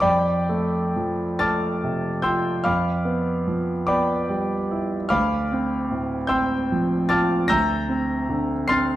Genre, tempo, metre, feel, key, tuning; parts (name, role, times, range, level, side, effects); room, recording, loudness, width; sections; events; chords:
classical, impressionist solo piano; 50 BPM (dotted quarters); 6/8; rubato; F lydian; A4 = 439 Hz
clear concert grand piano; solo; 0.0-9.0 s; D2 to C7; -20 LUFS; equal
moderate recital hall reverb, RT60 1.3 s; dark, warm production; -20 LUFS; side -14 dB against mid
0.0-9.0 A section
0.0 F6; 2.7 G6/F; 5.1 Dm7; 7.5 C11/D